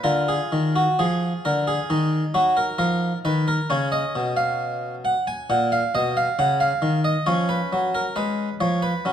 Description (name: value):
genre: classical, baroque-style suite movement for harpsichord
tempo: 67 BPM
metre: 4/4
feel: rubato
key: unclear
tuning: A4 = 440 Hz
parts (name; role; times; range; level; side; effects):
- harpsichord; solo; 0.0-9.1 s; A#2 to Ab5; -20 LUFS; equal; none
room: moderate recital hall reverb, RT60 1.6 s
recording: dark, warm production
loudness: -20 LUFS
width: side -9 dB against mid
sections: 0.0-9.1 A section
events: none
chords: 0.0 Ddim; 1.9 Ebm; 3.7 Badd9(#11); 7.3 Db/F